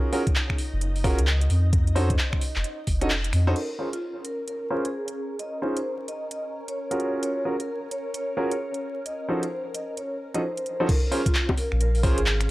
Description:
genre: UK garage, two-step garage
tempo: 131 BPM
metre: 4/4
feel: swing 62% on 16ths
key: Bb minor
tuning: A4 = 439 Hz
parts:
  - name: soft string machine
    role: sustained chords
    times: 0.0-12.5 s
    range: Db4 to F5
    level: -37 LUFS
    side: left 1 dB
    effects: phaser, ensemble chorus, sidechain pumping
  - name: clear concert grand piano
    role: stabs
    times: 0.0-12.2 s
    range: F3 to Eb5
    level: -28 LUFS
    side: right 1 dB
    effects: low-pass filter, analog delay
  - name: house drum kit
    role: drums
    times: 0.1-12.5 s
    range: bongos, crash cymbal, finger snaps, handclaps, hi-hat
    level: -30 LUFS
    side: equal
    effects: none
  - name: electronic kick drum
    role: drums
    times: 0.3-3.0, 10.9-12.1 s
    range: none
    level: -24 LUFS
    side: equal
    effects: none
  - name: soft dub sub bass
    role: bass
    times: 0.7-3.5, 11.7-12.5 s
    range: F1 to F2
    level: -22 LUFS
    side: equal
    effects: none
  - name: vibraphone with medium mallets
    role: melody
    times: 3.6-12.5 s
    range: F4 to Eb5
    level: -32 LUFS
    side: equal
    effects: analog delay
room: digital ambience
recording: dry, gritty hardware recording, transformer saturation, vinyl crackle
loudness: -23 LUFS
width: side -18 dB against mid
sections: 0.0-3.6 A section; 3.6-10.9 B section; 10.9-12.5 C section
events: kick drops out 3.1-3.6; band accent 3.1; drop 10.9-12.5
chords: 0.0 Gbmaj9; 1.7 F7b9b13; 3.6 Bbm9; 5.2 Dbadd9; 7.0 Gbmaj9; 9.1 F7b9b13; 10.9 Bbm9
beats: 0.35 0.81 1.27 | 1.73 2.19 2.65 3.10 | 3.56 4.02 4.48 4.94 | 5.39 5.85 6.31 6.77 | 7.23 7.68 8.14 8.60 | 9.06 9.52 9.97 10.43 | 10.89 11.35 11.81 12.26

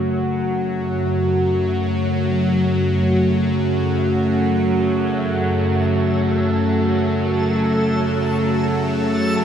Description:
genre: dark ambient drone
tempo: free time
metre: none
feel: none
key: unclear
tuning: A4 = 440 Hz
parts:
  - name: sweeping resonant pad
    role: sustained chords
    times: 0.0-9.4 s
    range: C#3 to F#4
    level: -19 LUFS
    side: right 1 dB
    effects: chorus
  - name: bowed-like drone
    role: drone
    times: 0.0-9.4 s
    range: F#2 to F#3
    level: -21 LUFS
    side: left 1 dB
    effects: built-in reverb, phaser
  - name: backwards swelling texture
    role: texture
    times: 5.7-9.4 s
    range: A4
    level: -27 LUFS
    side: right 1 dB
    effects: built-in reverb
room: wet cathedral reverb, RT60 5.7 s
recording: none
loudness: -17 LUFS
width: side -8 dB against mid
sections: 0.0-9.4 A section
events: none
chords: 0.0 F#m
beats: free time

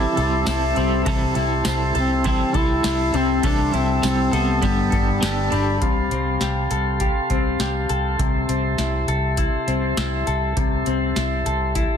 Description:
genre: dream pop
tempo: 101 BPM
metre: 4/4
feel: straight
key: C major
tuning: A4 = 441 Hz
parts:
  - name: mellow duduk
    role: melody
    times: 0.0-5.2 s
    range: B3 to E4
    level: -24 LUFS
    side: left 2 dB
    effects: ping-pong delay
  - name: clean electric guitar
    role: accompaniment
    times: 0.0-5.8 s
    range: C3 to A4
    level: -26 LUFS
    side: right 4 dB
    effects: tremolo, lush chorus
  - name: mellow tonewheel organ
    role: sustained chords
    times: 0.0-12.0 s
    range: G4 to C6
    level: -26 LUFS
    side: right 1 dB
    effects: slow rotary speaker
  - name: semi-hollow electric guitar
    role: arpeggios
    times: 0.0-12.0 s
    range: C3 to A4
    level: -25 LUFS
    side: left 6 dB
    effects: wide subtle chorus, ping-pong delay
  - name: glockenspiel with soft plastic mallets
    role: texture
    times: 0.0-6.1 s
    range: A5 to E6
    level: -34 LUFS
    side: equal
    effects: none
  - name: vintage muted fingered electric bass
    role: bass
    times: 0.2-11.9 s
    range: G1 to C2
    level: -24 LUFS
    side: equal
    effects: none
  - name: booming analog drum machine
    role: drums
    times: 0.2-11.9 s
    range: hi-hat, kick drum, ride cymbal, snare drum, tambourine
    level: -25 LUFS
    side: equal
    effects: overdrive
room: light reverb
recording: dense, heavily limited modern master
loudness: -18 LUFS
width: side -8 dB against mid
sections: 0.0-5.8 A section; 5.8-12.0 B section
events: none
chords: 0.0 C6; 4.6 Gadd9; 5.8 Fadd9/C; 8.2 C6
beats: 0.47 | 1.06 1.66 2.25 2.85 | 3.44 4.03 4.63 5.22 | 5.82 6.41 7.00 7.60 | 8.19 8.79 9.38 9.97 | 10.57 11.16 11.76

